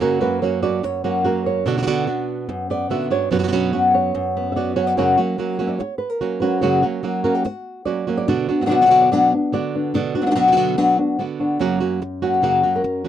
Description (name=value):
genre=flamenco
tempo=145 BPM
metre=4/4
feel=straight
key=unclear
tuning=A4 = 440 Hz
part: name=flamenco guitar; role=melody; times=0.0-13.1 s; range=F#2 to E5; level=-18 LUFS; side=left 2 dB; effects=none
part: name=flamenco guitar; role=stabs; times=0.0-13.1 s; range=F#2 to F#4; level=-22 LUFS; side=right 7 dB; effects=none
room=light reverb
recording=dry, close 1970s-style studio recording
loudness=-17 LUFS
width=side -10 dB against mid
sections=0.0-5.0 A section; 5.0-11.6 B section; 11.6-13.1 C section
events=nylon-string guitar solo 0.0-5.0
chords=0.0 F#; 1.7 Bm; 3.3 F#sus4; 5.0 F#; 8.3 Bm; 11.6 F#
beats=| 0.02 0.43 0.84 1.26 | 1.67 2.08 2.49 2.91 | 3.32 3.73 4.15 4.56 | 4.97 5.39 5.80 6.22 | 6.63 7.04 7.46 7.88 | 8.29 8.71 9.12 9.54 | 9.95 10.36 10.78 11.19 | 11.61 12.02 12.43 12.84